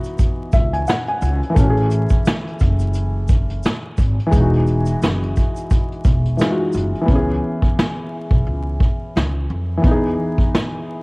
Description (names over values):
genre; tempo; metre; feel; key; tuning
lo-fi hip hop; 87 BPM; 4/4; swing 57% on 16ths; unclear; A4 = 440 Hz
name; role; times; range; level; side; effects
felt-muted upright piano; accompaniment; 0.0-11.0 s; E3 to G#5; -22 LUFS; left 1 dB; cassette tape
tube shaker; percussion; 0.0-6.9 s; none; -46 LUFS; right 4 dB; none
vintage brush drum kit; drums; 0.1-10.7 s; hi-hat, kick drum, snare drum; -17 LUFS; equal; vintage 12-bit sampler grit
upright bass; bass; 0.5-10.1 s; E1 to F2; -20 LUFS; equal; none
room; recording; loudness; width
studio reverb; home recording on cassette, vinyl crackle; -16 LUFS; side -28 dB against mid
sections
0.0-7.1 A section; 7.1-11.0 B section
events
felt piano fill 0.2-1.6; hi-hats muted 7.1-11.0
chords
0.0 C#m11; 1.6 Amaj7; 4.3 Emaj9; 7.1 C#m7; 9.8 Emaj7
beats
0.19 0.88 | 1.56 2.25 2.94 3.63 | 4.32 5.01 5.70 6.39 | 7.08 7.77 8.46 9.15 | 9.84 10.53